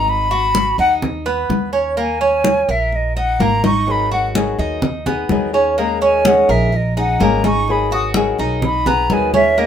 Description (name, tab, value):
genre	latin, Cuban son and guajira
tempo	126 BPM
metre	4/4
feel	straight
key	G# minor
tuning	A4 = 440 Hz
part	silver concert flute	melody	0.0-9.7 s	D#5 to D#6	-18 LUFS	left 1 dB	none
part	Cuban tres	arpeggios	0.0-9.7 s	A#3 to A#4	-19 LUFS	right 3 dB	none
part	upright bass	bass	0.0-9.7 s	G#1 to D#2	-22 LUFS	right 1 dB	none
part	congas	percussion	0.1-9.7 s	none	-20 LUFS	left 3 dB	none
part	flamenco guitar	accompaniment	3.9-9.7 s	D#3 to G#4	-21 LUFS	left 5 dB	none
room	moderate studio reverb, RT60 0.5 s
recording	minimal, uncompressed stereo recording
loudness	-14 LUFS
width	side -9 dB against mid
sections	0.0-9.7 A section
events	flute solo 0.0-9.7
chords	0.1 G#m7; 2.0 D#7sus4; 3.9 G#m7; 5.8 D#7sus4; 7.7 G#m7